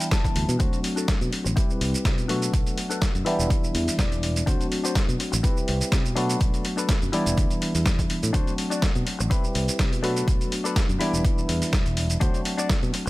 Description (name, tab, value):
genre	filtered disco house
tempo	124 BPM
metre	4/4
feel	swing 54% on 16ths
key	E minor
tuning	A4 = 441 Hz
part	bright tine electric piano	accompaniment	0.0-13.1 s	E3 to B4	-28 LUFS	equal	phaser, sidechain pumping, low-pass filter
part	direct-recorded clean electric guitar	riff	0.0-13.1 s	C4 to A5	-32 LUFS	left 5 dB	sidechain pumping, low-pass filter
part	dusty soul sampler-style drum kit	drums	0.0-13.1 s	hi-hat, shaker, snare drum	-29 LUFS	equal	overdrive, sidechain pumping on hats, sidechain pumping on perc
part	electronic kick drum	drums	0.1-12.8 s	none	-24 LUFS	equal	overdrive
part	fingered electric bass	bass	0.4-13.1 s	E1 to C3	-27 LUFS	equal	sidechain pumping, low-pass filter
room	little or no reverb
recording	none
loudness	-21 LUFS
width	side -19 dB against mid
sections	0.0-13.1 A section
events	clean electric guitar fill 0.0-0.6, 3.0-4.5; filter sweep 0.0-13.1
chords	0.0 Em7; 0.6 D7; 1.6 Cmaj7; 2.3 Bm7; 3.3 Em7; 4.5 D7; 5.4 Cmaj7; 6.2 Bm7; 7.1 Em7; 8.3 D7; 9.3 Cmaj7; 10.0 Bm7; 11.0 Em7; 12.2 D7